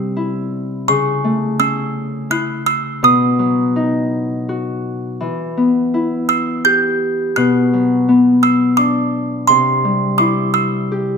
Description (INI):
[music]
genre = children's music, lullaby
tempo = 84 BPM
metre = 3/4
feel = rubato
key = unclear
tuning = A4 = 440 Hz
[part]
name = music box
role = melody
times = 0.0-11.2 s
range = C6 to G6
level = -16 LUFS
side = right 4 dB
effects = none
[part]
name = Celtic harp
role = accompaniment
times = 0.0-11.2 s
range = B2 to G4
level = -16 LUFS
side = left 2 dB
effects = none
[sound]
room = wet recital hall reverb, RT60 1.5 s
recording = dark, warm production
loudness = -14 LUFS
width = side -6 dB against mid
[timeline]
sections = 0.0-11.2 A section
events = none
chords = 0.0 C; 0.9 A/C#; 3.0 B; 5.2 Em; 7.4 Bm; 9.5 C